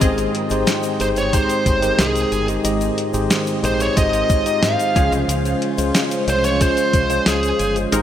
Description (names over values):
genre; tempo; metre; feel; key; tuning
1980s-style pop; 91 BPM; 4/4; straight; unclear; A4 = 440 Hz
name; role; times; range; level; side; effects
tine electric piano; accompaniment; 0.0-8.0 s; Ab2 to Eb5; -21 LUFS; left 2 dB; medium stereo tremolo
phased analog pad; sustained chords; 0.0-8.0 s; C3 to G5; -28 LUFS; equal; phaser, chorus
funky polysynth comp; stabs; 0.0-8.0 s; F3 to Eb5; -27 LUFS; equal; chorus, digital delay
deep dub fingered electric bass; bass; 0.0-8.0 s; G1 to Ab2; -24 LUFS; equal; none
clean 12-bit digital drum machine; drums; 0.0-8.0 s; hi-hat, kick drum, snare drum; -21 LUFS; equal; none
tube shaker; percussion; 0.0-8.0 s; none; -34 LUFS; left 7 dB; none
bluesy overdriven lead guitar; melody; 1.0-7.7 s; Ab4 to F5; -21 LUFS; right 1 dB; distortion, digital delay
room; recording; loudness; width
moderate plate reverb, RT60 2.7 s; bright 1980s-style digital production; -16 LUFS; side -10 dB against mid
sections
0.0-8.0 A section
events
none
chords
0.0 Abmaj7; 5.0 Dbmaj7